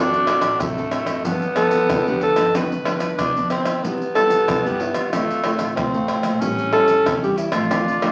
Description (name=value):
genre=samba and choro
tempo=93 BPM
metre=4/4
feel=straight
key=unclear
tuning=A4 = 440 Hz
part: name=breathy alto saxophone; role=melody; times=0.0-8.1 s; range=E4 to B4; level=-23 LUFS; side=equal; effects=none
part: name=growling tenor saxophone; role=second line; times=0.0-8.1 s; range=A3 to D4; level=-25 LUFS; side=equal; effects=none
part: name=nylon-string guitar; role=accompaniment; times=0.0-8.1 s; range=G2 to A4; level=-28 LUFS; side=equal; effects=none
part: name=upright bass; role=bass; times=0.0-8.1 s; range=A1 to G3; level=-40 LUFS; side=equal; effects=none
part: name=maracas, surdo, pandeiro and tamborim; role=percussion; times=0.1-8.1 s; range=none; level=-26 LUFS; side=equal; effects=none
room=wet studio reverb, RT60 0.9 s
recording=very old 78 rpm record, vinyl crackle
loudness=-20 LUFS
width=mono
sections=0.0-8.1 A section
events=none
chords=0.0 D7; 1.2 G7; 3.8 Cmaj7; 5.1 Dm7; 6.4 A7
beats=0.60 | 1.25 1.90 2.54 3.19 | 3.83 4.48 5.12 5.77 | 6.41 7.06 7.70